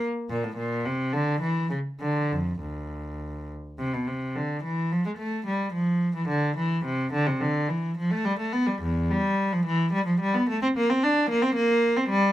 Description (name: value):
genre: classical, baroque-style suite movement for unaccompanied cello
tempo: 99-113 BPM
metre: 3/4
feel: rubato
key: D minor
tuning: A4 = 442 Hz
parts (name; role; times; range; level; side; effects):
- rich cello; solo; 0.3-12.3 s; D2 to D4; -24 LUFS; equal; none
room: light reverb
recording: minimal, uncompressed stereo recording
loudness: -24 LUFS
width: side -13 dB against mid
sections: 0.0-3.8 A section; 3.8-12.3 A section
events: none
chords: none